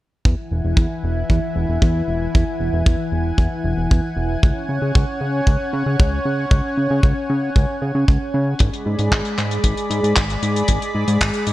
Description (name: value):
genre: italo disco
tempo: 115 BPM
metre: 4/4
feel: straight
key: unclear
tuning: A4 = 440 Hz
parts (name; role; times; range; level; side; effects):
- lush unison pad; sustained chords; 0.3-11.5 s; E3 to B5; -23 LUFS; equal; chorus
- fat analog bass; bass; 0.3-11.5 s; E1 to C#3; -21 LUFS; equal; tube saturation
- kick drum; drums; 0.3-11.3 s; none; -17 LUFS; equal; studio reverb
- damped 70s drum kit; drums; 8.6-11.5 s; handclaps, hi-hat; -23 LUFS; equal; low-pass filter on hats, studio reverb, low-pass filter on snare, low-pass filter on room
room: little or no reverb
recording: none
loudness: -17 LUFS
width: side -16 dB against mid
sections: 0.3-11.5 A section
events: filter sweep on analog synth bass 0.3-11.5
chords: 0.3 Eadd9; 4.4 C#sus4; 8.6 G#dim